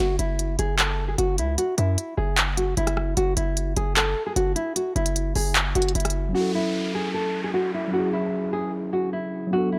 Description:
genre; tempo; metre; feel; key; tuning
hip hop, trap; 151 BPM; 4/4; half-time; F# minor; A4 = 440 Hz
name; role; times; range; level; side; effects
nylon-string guitar; melody; 0.0-9.8 s; E4 to A4; -28 LUFS; equal; low-pass filter, tape echo
hard-hitting 808-style bass; bass; 0.0-6.3 s; F#1 to F#2; -27 LUFS; equal; transformer saturation
trap drum kit; drums; 0.2-6.1 s; handclaps, hi-hat, rim click; -26 LUFS; equal; none
mellow tine electric piano; accompaniment; 6.3-9.8 s; F#3 to A4; -29 LUFS; equal; low-pass filter
downlifter; sound effects; 6.3-9.5 s; none; -38 LUFS; equal; none
room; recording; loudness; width
digital ambience; dry, gritty hardware recording, transformer saturation; -24 LUFS; mono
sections
0.0-6.3 A section; 6.3-9.8 B section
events
none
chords
0.0 F#5; 1.6 Esus2/F#; 6.3 F#m7; 7.9 C#m/F#

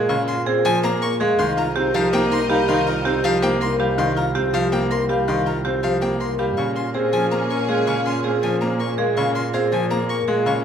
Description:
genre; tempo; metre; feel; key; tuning
classical, minimalist pattern music; 324 BPM (eighths); 7/8; straight; Bb dorian; A4 = 442 Hz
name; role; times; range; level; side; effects
vibraphone with medium mallets; melody; 0.0-10.6 s; G4 to F5; -24 LUFS; left 7 dB; none
bright grand piano; accompaniment; 0.0-10.6 s; Db3 to C4; -24 LUFS; left 1 dB; none
marimba with medium hard mallets; arpeggios; 0.0-10.5 s; F4 to C5; -24 LUFS; right 7 dB; none
rich cello; bass; 0.0-10.6 s; C2 to Bb2; -27 LUFS; right 2 dB; none
rich violin; arpeggios; 0.1-10.6 s; F5 to Db6; -28 LUFS; left 2 dB; none
warm clarinet; second line; 1.4-3.7, 6.6-8.9 s; Db4 to Eb4; -29 LUFS; right 2 dB; none
rich studio violin section; sustained chords; 1.4-3.8, 6.6-8.9 s; Ab4 to Eb5; -30 LUFS; left 1 dB; none
room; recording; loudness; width
wet recital hall reverb, RT60 1.5 s; none; -18 LUFS; side -8 dB against mid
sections
0.0-10.6 A section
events
none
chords
0.0 Bbm7; 1.4 Cm7; 6.6 Bbm7

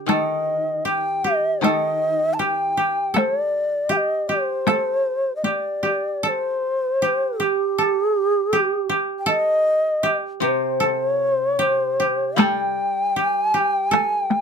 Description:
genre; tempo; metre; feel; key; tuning
japanese traditional, Japanese chamber music; 78 BPM; 2/4; rubato; unclear; A4 = 441 Hz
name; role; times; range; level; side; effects
koto; second line; 0.0-14.4 s; G4 to A4; -24 LUFS; right 2 dB; none
koto; accompaniment; 0.0-3.9, 10.4-14.4 s; C3 to G3; -28 LUFS; left 3 dB; none
mellow long shakuhachi; melody; 0.1-14.4 s; G4 to A5; -20 LUFS; equal; none
taiko ensemble; percussion; 0.1-5.6, 12.4-14.4 s; none; -21 LUFS; left 1 dB; none
room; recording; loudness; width
light reverb; close, detailed microphones; -18 LUFS; side -6 dB against mid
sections
0.0-6.2 A section; 6.2-14.4 B section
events
none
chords
none

